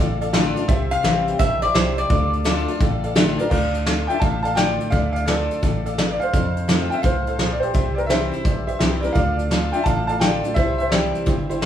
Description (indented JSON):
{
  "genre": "honky-tonk and classic country",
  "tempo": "170 BPM",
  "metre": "4/4",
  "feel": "swing 66% on 8ths",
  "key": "D minor",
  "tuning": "A4 = 444 Hz",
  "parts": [
    { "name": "lap resonator guitar", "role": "second line", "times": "0.0-3.2 s", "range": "C5 to F5", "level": "-23 LUFS", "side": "left 1 dB", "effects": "none" },
    { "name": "picked steel-string acoustic guitar", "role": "accompaniment", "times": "0.0-11.7 s", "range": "F2 to F4", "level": "-26 LUFS", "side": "left 3 dB", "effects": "none" },
    { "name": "tack piano", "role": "accompaniment", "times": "0.0-11.7 s", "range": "E4 to F5", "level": "-28 LUFS", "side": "right 1 dB", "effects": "none" },
    { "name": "rubbery square bass", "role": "bass", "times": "0.0-11.7 s", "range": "G1 to F2", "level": "-26 LUFS", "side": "equal", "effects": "none" },
    { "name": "soft brush drum kit", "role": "drums", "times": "0.2-11.7 s", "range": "crash cymbal, hi-hat, kick drum, snare drum", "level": "-22 LUFS", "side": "equal", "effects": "none" },
    { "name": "bright upright piano", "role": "melody", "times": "3.4-11.6 s", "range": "G4 to A5", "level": "-23 LUFS", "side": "equal", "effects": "none" }
  ],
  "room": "moderate small room ambience, RT60 0.5 s",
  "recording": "band playing live in one room, studio reverb",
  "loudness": "-18 LUFS",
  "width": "side -10 dB against mid",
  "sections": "0.0-3.5 A section; 3.5-11.7 B section",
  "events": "resonator guitar played with a steel bar solo 0.0-3.5",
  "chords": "0.0 Dm; 0.7 C; 2.1 Dm; 6.3 F; 7.7 C; 9.2 Dm; 10.6 C"
}